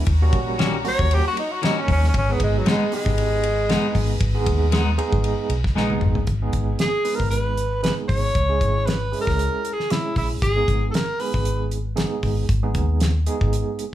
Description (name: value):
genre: straight-eighth soul blues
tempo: 116 BPM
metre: 4/4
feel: swing 56% on 16ths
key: G# minor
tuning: A4 = 441 Hz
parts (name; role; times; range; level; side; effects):
- overdriven tine electric piano; accompaniment; 0.0-13.8 s; G3 to B4; -28 LUFS; right 5 dB; fast tremolo
- clear symphonic string section; sustained chords; 0.0-6.2 s; B4 to A#5; -35 LUFS; left 2 dB; none
- vintage muted fingered electric bass; bass; 0.1-13.6 s; G#1 to D#2; -22 LUFS; left 1 dB; none
- damped 70s drum kit; drums; 0.1-13.9 s; hi-hat, kick drum, ride cymbal, snare drum, toms; -25 LUFS; equal; none
- clean electric guitar; stabs; 0.6-5.9 s; G#2 to F#4; -24 LUFS; left 3 dB; spring reverb
- breathy tenor saxophone; melody; 0.9-11.7 s; F#3 to C#5; -24 LUFS; equal; plate reverb
room: light reverb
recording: small room ambience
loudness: -19 LUFS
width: side -12 dB against mid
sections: 0.0-6.3 A section; 6.3-13.9 B section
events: tenor saxophone solo 0.0-6.3; drum fill 5.8-6.3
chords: 0.1 D#7#9; 2.1 G#m; 8.3 C#m; 10.4 G#m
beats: | 0.07 0.59 1.11 1.62 | 2.14 2.66 3.17 3.69 | 4.21 4.72 5.24 5.76 | 6.28 6.79 7.31 7.83 | 8.35 8.87 9.38 9.90 | 10.42 10.94 11.46 11.98 | 12.49 13.01 13.53